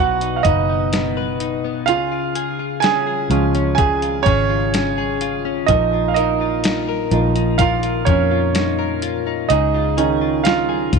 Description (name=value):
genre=pop ballad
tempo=63 BPM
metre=4/4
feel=straight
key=unclear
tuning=A4 = 440 Hz
part: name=clear baby grand piano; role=accompaniment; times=0.0-11.0 s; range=Eb3 to Ab5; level=-18 LUFS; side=right 10 dB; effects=none
part: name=direct-recorded clean electric guitar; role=arpeggios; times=0.0-11.0 s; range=Bb2 to B4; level=-23 LUFS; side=left 15 dB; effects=wide subtle chorus
part: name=vintage muted fingered electric bass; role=bass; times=0.0-11.0 s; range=F#1 to F2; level=-22 LUFS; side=left 3 dB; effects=none
part: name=dusty soul sampler-style drum kit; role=drums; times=0.2-11.0 s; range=hi-hat, kick drum, snare drum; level=-22 LUFS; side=left 3 dB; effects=none
room=moderate plate reverb, RT60 2.6 s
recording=1960s-style stereo with parts hard left and right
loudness=-16 LUFS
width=side -5 dB against mid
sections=0.0-11.0 A section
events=grand piano solo 0.0-11.0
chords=0.0 B; 1.9 Db; 5.7 Bbsus4; 9.5 Dbadd9